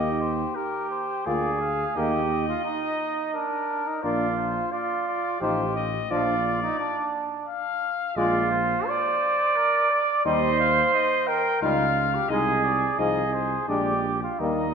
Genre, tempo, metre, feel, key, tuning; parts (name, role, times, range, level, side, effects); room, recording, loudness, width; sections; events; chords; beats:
classical, brass quintet; 87 BPM; 3/4; rubato; Eb major; A4 = 440 Hz
clear trumpet; melody; 0.0-14.7 s; Bb4 to G5; -29 LUFS; left 7 dB
clear flugelhorn; second line; 0.0-14.7 s; D4 to D5; -25 LUFS; right 4 dB
brilliant trombone; accompaniment; 0.0-14.7 s; F3 to Bb3; -34 LUFS; right 2 dB
warm French horn; accompaniment; 0.0-14.7 s; Bb3 to F4; -31 LUFS; left 5 dB
dark tuba; bass; 0.0-14.7 s; A1 to Eb2; -31 LUFS; right 2 dB
wet concert hall reverb, RT60 2.1 s; minimal, uncompressed stereo recording; -22 LUFS; side -6 dB against mid
0.0-14.7 A section
0.0 Eb; 1.3 Bb7/D; 2.0 Eb5; 4.0 Bb; 5.4 F7/A; 6.1 Bb; 8.2 Bb7; 10.3 Eb; 11.6 Eb7/Db; 12.3 Ab/C; 13.0 Fm7/C; 13.7 Bb7
0.56 1.26 | 1.96 2.65 3.34 | 4.04 4.73 5.41 | 6.11 6.80 7.48 | 8.17 8.88 9.57 | 10.26 10.94 11.62 | 12.30 12.99 13.69 | 14.40